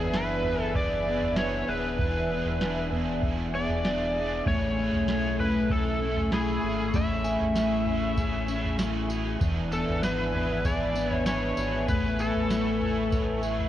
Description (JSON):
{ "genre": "dream pop", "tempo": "97 BPM", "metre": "4/4", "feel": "straight", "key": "A major", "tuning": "A4 = 440 Hz", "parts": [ { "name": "overdriven slide guitar", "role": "melody", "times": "0.0-13.4 s", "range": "G#4 to E5", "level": "-30 LUFS", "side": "equal", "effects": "digital delay" }, { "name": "overdriven semi-hollow guitar", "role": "accompaniment", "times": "0.0-13.7 s", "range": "E3 to C#5", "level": "-35 LUFS", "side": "right 4 dB", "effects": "harmonic tremolo, analog chorus" }, { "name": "lush unison pad", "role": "sustained chords", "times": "0.0-13.7 s", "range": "A3 to C#6", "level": "-34 LUFS", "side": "right 1 dB", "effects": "chorus" }, { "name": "twelve-string electric guitar", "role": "arpeggios", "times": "0.0-13.7 s", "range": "E3 to C#5", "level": "-31 LUFS", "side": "left 3 dB", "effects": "analog chorus, digital delay" }, { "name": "sub bass with octave", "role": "bass", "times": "0.0-13.7 s", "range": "D1 to B1", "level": "-34 LUFS", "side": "equal", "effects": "none" }, { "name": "soft vintage rhythm box", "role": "drums", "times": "0.1-13.7 s", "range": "kick drum, snare drum, tambourine, toms", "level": "-31 LUFS", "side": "right 1 dB", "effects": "none" }, { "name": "large celesta", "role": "texture", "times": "0.1-2.5, 6.3-12.2 s", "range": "E5 to E6", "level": "-42 LUFS", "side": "right 1 dB", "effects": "digital delay" } ], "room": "moderate recital hall reverb, RT60 1.4 s", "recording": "worn, warbling old tape, cassette tape, warbly pitch drift", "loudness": "-24 LUFS", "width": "side -12 dB against mid", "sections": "0.0-13.7 A section", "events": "none", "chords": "0.0 E7; 4.5 Amaj7; 9.4 E7; 11.9 Amaj9", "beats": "0.13 0.75 1.37 | 1.99 2.61 3.23 3.84 | 4.46 5.08 5.70 6.32 | 6.94 7.55 8.17 8.79 | 9.41 10.03 10.65 11.27 | 11.88 12.50 13.12" }